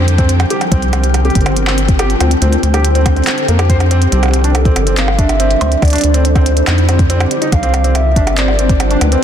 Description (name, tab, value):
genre	IDM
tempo	141 BPM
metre	4/4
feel	straight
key	unclear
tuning	A4 = 440 Hz
part	granular cloud pad	sustained chords	0.0-9.2 s	D3 to C5	-18 LUFS	equal	built-in reverb
part	felt-muted upright piano	arpeggios	0.0-9.2 s	Bb3 to C5	-20 LUFS	equal	ping-pong delay
part	rubbery square bass	bass	0.0-9.2 s	G1 to F2	-13 LUFS	equal	tube saturation
part	flickering grainy texture	texture	0.0-9.2 s	D5 to G5	-27 LUFS	equal	built-in reverb
part	glitchy drum kit	drums	0.1-9.2 s	handclaps, hi-hat, percussion blips	-20 LUFS	right 2 dB	ping-pong delay
part	electronic kick drum	drums	0.2-8.8 s	none	-13 LUFS	equal	none
part	warbly nostalgic lead	melody	4.5-9.2 s	A4 to F5	-19 LUFS	equal	chorus, digital delay
room	light reverb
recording	dense, heavily limited modern master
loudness	-10 LUFS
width	side -9 dB against mid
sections	0.0-9.2 A section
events	none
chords	0.0 F9sus4; 0.7 C9sus4; 1.4 G9sus4; 2.2 D9sus4; 3.3 F9sus4; 4.1 C9sus4; 4.8 G9sus4; 5.6 D9sus4; 6.7 F9sus4; 7.5 C9sus4; 8.2 G9sus4